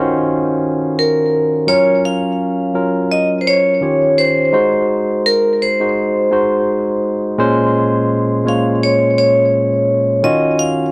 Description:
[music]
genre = R&B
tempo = 84 BPM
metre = 4/4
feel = swing 56% on 16ths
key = Eb dorian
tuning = A4 = 438 Hz
[part]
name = barky tine electric piano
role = accompaniment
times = 0.0-10.9 s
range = Bb2 to F5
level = -18 LUFS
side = equal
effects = analog delay
[part]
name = vibraphone with hard mallets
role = melody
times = 1.0-10.9 s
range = Bb4 to F5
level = -17 LUFS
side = equal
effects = analog delay
[sound]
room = moderate spring reverb, RT60 1.3 s, studio reverb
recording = echo-heavy mix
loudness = -15 LUFS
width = mono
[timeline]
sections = 0.0-1.7 A section; 1.7-10.9 B section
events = none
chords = 0.0 Ebm7; 1.7 Gbmaj7; 3.8 Eb13; 4.5 Ab7; 7.4 Bbm9; 10.2 Ebm9

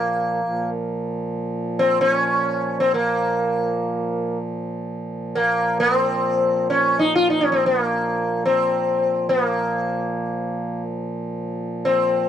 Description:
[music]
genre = indian classical, Hindustani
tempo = free time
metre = none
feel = none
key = Bb raga darbari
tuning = A4 = 440 Hz
[part]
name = sitar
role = melody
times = 0.0-12.3 s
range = Bb3 to F4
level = -20 LUFS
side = left 1 dB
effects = none
[part]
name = pedal harmonium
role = drone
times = 0.0-12.3 s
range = Bb2 to F3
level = -27 LUFS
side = right 1 dB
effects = stereo widening
[sound]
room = little or no reverb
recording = dry, close 1970s-style studio recording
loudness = -19 LUFS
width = side -9 dB against mid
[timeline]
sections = 0.0-12.3 A section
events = none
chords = none

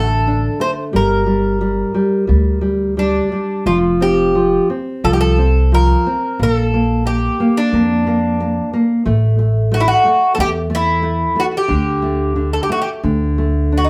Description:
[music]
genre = fado-style ballad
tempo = 90 BPM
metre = 4/4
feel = rubato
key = G minor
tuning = A4 = 439 Hz
[part]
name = Greek bouzouki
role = melody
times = 0.0-13.9 s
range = D4 to C5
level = -20 LUFS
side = equal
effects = slapback echo
[part]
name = nylon-string guitar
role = accompaniment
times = 0.0-13.9 s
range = D3 to D4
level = -20 LUFS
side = equal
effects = none
[part]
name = upright bass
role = bass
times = 0.0-13.9 s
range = F1 to F2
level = -20 LUFS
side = equal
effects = none
[sound]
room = wet small room reverb, RT60 0.6 s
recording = heard from further back in the room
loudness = -16 LUFS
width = mono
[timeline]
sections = 0.0-13.9 A section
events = none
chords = 0.0 D5; 0.9 Gm; 3.7 Fsus2; 6.4 Bb; 9.1 A5; 11.7 D5

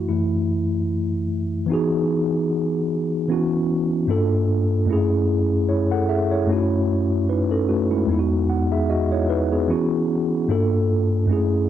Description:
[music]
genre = hip hop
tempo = 75 BPM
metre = 4/4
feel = swing 55% on 16ths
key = E major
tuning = A4 = 442 Hz
[part]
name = mellow tine electric piano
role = solo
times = 0.0-11.7 s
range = E2 to F#5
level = -19 LUFS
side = equal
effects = medium stereo tremolo, cassette tape
[sound]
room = light reverb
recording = cassette tape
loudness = -19 LUFS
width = side -11 dB against mid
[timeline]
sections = 0.0-1.7 A section; 1.7-11.7 B section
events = tine electric piano solo 0.0-1.7; filter sweep on tine electric piano 0.0-1.7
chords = 0.0 F#m7; 1.7 Emaj9; 3.3 Bsus24/E; 4.1 Gm9; 4.9 F#m9; 6.5 F#m13; 8.1 Emaj9; 9.7 E69; 10.5 Gm9

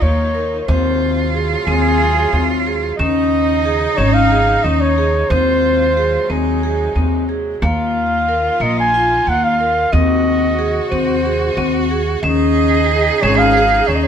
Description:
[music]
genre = contemporary instrumental, chamber music in an uneven meter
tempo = 182 BPM (eighths)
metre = 7/8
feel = straight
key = unclear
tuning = A4 = 440 Hz
[part]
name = breathy flugelhorn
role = melody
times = 0.0-14.1 s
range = Ab4 to Ab5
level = -18 LUFS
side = right 1 dB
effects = none
[part]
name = clear cello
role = second line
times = 0.0-14.1 s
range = Eb4 to Ab4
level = -22 LUFS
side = right 4 dB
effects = none
[part]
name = rich chamber string section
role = sustained chords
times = 0.0-14.1 s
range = C3 to Gb4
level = -28 LUFS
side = left 2 dB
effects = none
[part]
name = vibraphone with hard mallets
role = arpeggios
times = 0.0-14.1 s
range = Bb3 to Bb4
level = -18 LUFS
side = left 3 dB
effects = none
[part]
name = upright bass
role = bass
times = 0.0-14.1 s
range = Ab1 to Eb2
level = -19 LUFS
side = right 1 dB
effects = none
[sound]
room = light reverb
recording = none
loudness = -13 LUFS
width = side -8 dB against mid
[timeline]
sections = 0.0-14.1 A section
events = none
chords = 0.0 Ebsus2; 0.7 Ab7/Eb; 3.0 Dbadd9; 5.3 Ab7/Eb; 7.6 Ebsus2; 9.9 Ab7/Eb; 12.2 Dbadd9

